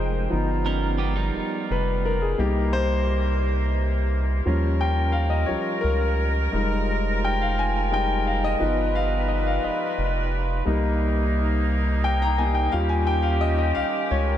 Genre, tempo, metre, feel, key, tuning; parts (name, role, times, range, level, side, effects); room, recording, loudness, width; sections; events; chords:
slow six-eight R&B; 58 BPM (dotted quarters); 6/8; straight; A4 = 439 Hz
clear concert grand piano; accompaniment; 0.0-14.4 s; F3 to Bb5; -25 LUFS; left 2 dB
warm woodwind section; sustained chords; 0.0-14.4 s; C3 to A#5; -30 LUFS; right 1 dB
round analog bass; bass; 0.0-14.4 s; F1 to Eb2; -24 LUFS; equal
clean electric guitar; second line; 0.7-2.2 s; G3 to A#4; -34 LUFS; right 6 dB; wide subtle chorus
moderate huge ambient reverb, RT60 8.0 s; dreamy mix soaked in reverb; -21 LUFS; side -11 dB against mid
0.0-14.4 A section
grand piano solo 0.0-14.4
0.3 G7alt; 2.4 Cm7; 4.5 Eb9; 6.5 Fm9; 8.6 G7alt; 10.7 Cm7; 12.7 Eb9